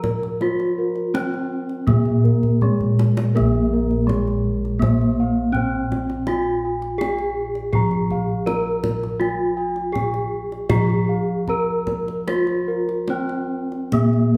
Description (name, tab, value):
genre	Javanese gamelan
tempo	81 BPM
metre	4/4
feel	uneven beats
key	unclear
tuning	A4 = 440 Hz
part	gamelan-type bronze metallophone	melody	0.0-14.4 s	Ab3-45c to Bb4	-25 LUFS	equal	slapback echo
part	gamelan-type bossed gongs	arpeggios	0.0-14.4 s	Ab4-45c to Bb5	-31 LUFS	equal	none
part	gamelan-type bossed gongs	bass	0.0-14.4 s	Bb1 to Bb4	-26 LUFS	equal	none
part	kendang	percussion	0.0-14.4 s	none	-28 LUFS	equal	none
room	wet recital hall reverb, RT60 1.6 s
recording	heard from further back in the room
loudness	-21 LUFS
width	mono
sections	0.0-14.4 A section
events	drum fill 2.4-3.4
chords	none